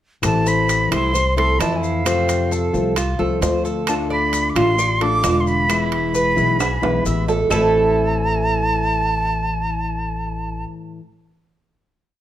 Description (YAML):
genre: latin, Cuban son and guajira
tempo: 132 BPM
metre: 4/4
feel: straight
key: A harmonic minor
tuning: A4 = 439 Hz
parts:
  - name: nylon-string guitar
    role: accompaniment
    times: 0.2-11.0 s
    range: A2 to F4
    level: -23 LUFS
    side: left 4 dB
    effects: none
  - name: upright bass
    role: bass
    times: 0.2-10.6 s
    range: E1 to F2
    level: -23 LUFS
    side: left 1 dB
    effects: none
  - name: claves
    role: percussion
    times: 0.2-7.6 s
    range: none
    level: -31 LUFS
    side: equal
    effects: none
  - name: maracas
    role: percussion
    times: 0.2-7.6 s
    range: none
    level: -32 LUFS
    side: left 6 dB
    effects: none
  - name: timbales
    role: percussion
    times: 0.2-7.6 s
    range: none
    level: -28 LUFS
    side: right 7 dB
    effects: none
  - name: jazz flute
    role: melody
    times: 0.3-10.6 s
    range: F5 to D6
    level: -21 LUFS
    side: right 1 dB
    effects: plate reverb
  - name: Cuban tres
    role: arpeggios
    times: 0.5-10.6 s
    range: A3 to E5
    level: -22 LUFS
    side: right 3 dB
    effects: none
room: moderate large studio reverb, RT60 1.1 s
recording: none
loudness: -16 LUFS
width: side -12 dB against mid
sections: 0.2-7.5 verse; 7.5-11.2 final chord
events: drum fill 6.6-7.5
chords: 0.2 Am; 2.1 F; 3.9 Dm; 5.7 E; 7.5 Am